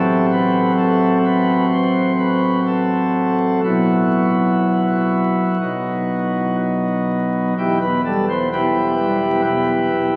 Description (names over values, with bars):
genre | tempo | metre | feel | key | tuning
classical, chorale-style piece for pipe organ | 60-65 BPM | 4/4 | rubato | E minor | A4 = 441 Hz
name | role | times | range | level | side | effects
pipe organ, sparkling flutes | solo | 0.0-10.2 s | E1 to C5 | -18 LUFS | equal | none
room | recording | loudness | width
wet cathedral reverb, RT60 6.3 s | very old 78 rpm record, vinyl crackle | -18 LUFS | mono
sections
0.0-7.6 A section; 7.6-10.2 B section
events
none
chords
0.0 F#dim/A; 3.6 Bsus4; 5.6 B; 7.6 Em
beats
0.79 1.72 2.67 | 3.64 4.62 5.61 6.60 | 7.57 8.51 9.44